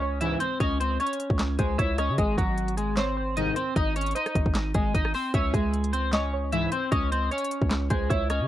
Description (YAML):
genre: hip hop, trap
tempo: 152 BPM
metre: 4/4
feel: half-time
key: C# harmonic minor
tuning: A4 = 440 Hz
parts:
  - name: clean electric guitar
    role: melody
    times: 0.0-8.5 s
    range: F#3 to E5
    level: -28 LUFS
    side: equal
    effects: analog chorus, low-pass filter
  - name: warbly dusty pluck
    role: second line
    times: 0.0-8.5 s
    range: B#4 to E5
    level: -34 LUFS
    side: equal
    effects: chorus, analog delay
  - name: hard-hitting 808-style bass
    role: bass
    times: 0.0-8.5 s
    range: G#1 to C#3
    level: -28 LUFS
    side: equal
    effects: transformer saturation
  - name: analog synth brass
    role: stabs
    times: 0.2-0.4, 3.4-3.5, 6.5-6.7 s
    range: B#1 to E3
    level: -29 LUFS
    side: left 2 dB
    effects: chorus
  - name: trap drum kit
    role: drums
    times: 0.2-8.4 s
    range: handclaps, hi-hat, kick drum, rim click, snare drum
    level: -27 LUFS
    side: equal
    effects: none
room: little or no reverb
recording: dry, gritty hardware recording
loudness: -24 LUFS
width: side -13 dB against mid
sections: 0.0-8.5 A section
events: none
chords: 0.0 C#m; 2.2 G#; 5.3 C#m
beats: 0.21 | 0.60 1.00 1.39 1.79 | 2.18 2.58 2.97 3.37 | 3.76 4.16 4.55 4.95 | 5.34 5.74 6.13 6.53 | 6.92 7.31 7.71 8.10